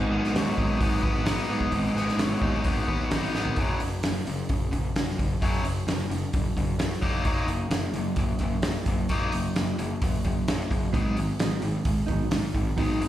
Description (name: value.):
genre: indie rock.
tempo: 130 BPM.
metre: 4/4.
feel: straight.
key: F# major.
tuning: A4 = 440 Hz.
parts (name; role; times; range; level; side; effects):
crunchy overdriven guitar; riff; 0.0-13.1 s; F#2 to B4; -28 LUFS; left 2 dB; spring reverb, slapback echo.
mellow electric guitar; riff; 0.0-3.6, 10.9-13.0 s; F#3 to D#4; -33 LUFS; right 9 dB; lush chorus, digital delay, slapback echo.
fuzz picked electric bass; bass; 0.0-13.1 s; F#1 to G#2; -31 LUFS; equal; overdrive.
loose indie drum kit; drums; 0.2-13.1 s; hi-hat, kick drum, snare drum, toms; -28 LUFS; equal; none.
room: studio reverb.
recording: live gig heard through the venue's PA, club reverb.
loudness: -24 LUFS.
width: side -12 dB against mid.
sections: 0.0-3.6 A section; 3.6-13.1 B section.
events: drum fill 3.3.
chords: 0.0 G#m7; 3.6 F#5; 7.0 D#m/F#; 10.9 G#m7.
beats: 0.35 0.81 1.27 | 1.73 2.19 2.65 3.11 | 3.57 4.03 4.49 4.95 | 5.41 5.87 6.33 6.79 | 7.25 7.71 8.18 8.64 | 9.10 9.56 10.02 10.48 | 10.94 11.40 11.87 12.33 | 12.79.